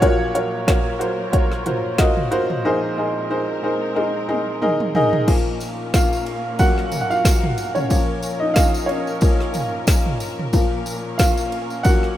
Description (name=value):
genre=piano-driven pop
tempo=91 BPM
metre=4/4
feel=swing 56% on 16ths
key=unclear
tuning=A4 = 440 Hz
part: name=clear upright piano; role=accompaniment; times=0.0-12.2 s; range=Bb1 to Gb5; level=-20 LUFS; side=equal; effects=none
part: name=muted studio string section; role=sustained chords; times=0.0-12.2 s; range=Bb2 to Bb4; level=-30 LUFS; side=equal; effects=none
part: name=deep house drum kit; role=drums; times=0.0-12.1 s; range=crash cymbal, hi-hat, kick drum, ride cymbal, snare drum, toms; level=-19 LUFS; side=equal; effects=none
part: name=tambourine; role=percussion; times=5.3-12.0 s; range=none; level=-32 LUFS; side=left 1 dB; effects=none
room=light reverb, small room reverb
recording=rough home demo mix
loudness=-17 LUFS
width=side -12 dB against mid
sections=0.0-5.3 A section; 5.3-12.2 A section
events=drum fill 4.0-5.3; upright piano solo 5.3-12.2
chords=0.0 Gbmaj7/Bb; 2.6 Abadd9/Bb; 5.3 Gbmaj7/Bb; 7.9 Db6/Bb; 10.5 Gbmaj7/Bb